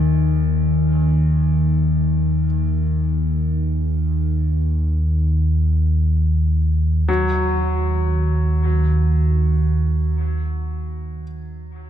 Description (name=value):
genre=dark ambient drone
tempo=free time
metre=none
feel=none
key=Eb minor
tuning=A4 = 439 Hz
part: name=bright baby grand piano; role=arpeggios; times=0.0-11.9 s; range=Bb1 to Gb3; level=-27 LUFS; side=left 1 dB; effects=diffuse ambient delay
part: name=deep rumbling drone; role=drone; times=0.0-11.2 s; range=Eb2 to Eb3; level=-17 LUFS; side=equal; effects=built-in reverb
room=wet cathedral reverb, RT60 5.9 s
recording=dark, warm production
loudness=-17 LUFS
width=side -10 dB against mid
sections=0.0-7.1 A section; 7.1-11.2 B section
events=none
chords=0.0 Eb5; 7.1 Ebm